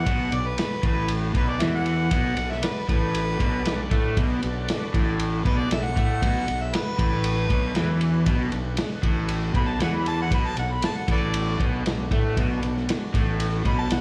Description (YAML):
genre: blues rock power trio and southern rock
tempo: 117 BPM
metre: 4/4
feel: straight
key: B minor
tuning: A4 = 439 Hz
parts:
  - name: mellow harmonica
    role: melody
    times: 0.0-14.0 s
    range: A4 to B5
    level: -32 LUFS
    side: equal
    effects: overdrive, slapback echo
  - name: overdriven tonewheel organ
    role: sustained chords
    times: 0.0-14.0 s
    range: B3 to D5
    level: -40 LUFS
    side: equal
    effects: none
  - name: crunchy overdriven guitar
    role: riff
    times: 0.0-14.0 s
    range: A2 to A3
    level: -30 LUFS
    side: equal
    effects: slapback echo
  - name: fuzz fingered electric bass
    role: bass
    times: 0.0-14.0 s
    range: A1 to A2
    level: -30 LUFS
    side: equal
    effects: overdrive
  - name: vintage drum kit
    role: drums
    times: 0.1-14.0 s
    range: kick drum, ride cymbal, snare drum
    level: -28 LUFS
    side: equal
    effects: none
room: studio ambience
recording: live gig heard through the venue's PA, club reverb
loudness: -24 LUFS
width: mono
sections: 0.0-14.0 A section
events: none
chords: 0.0 Bm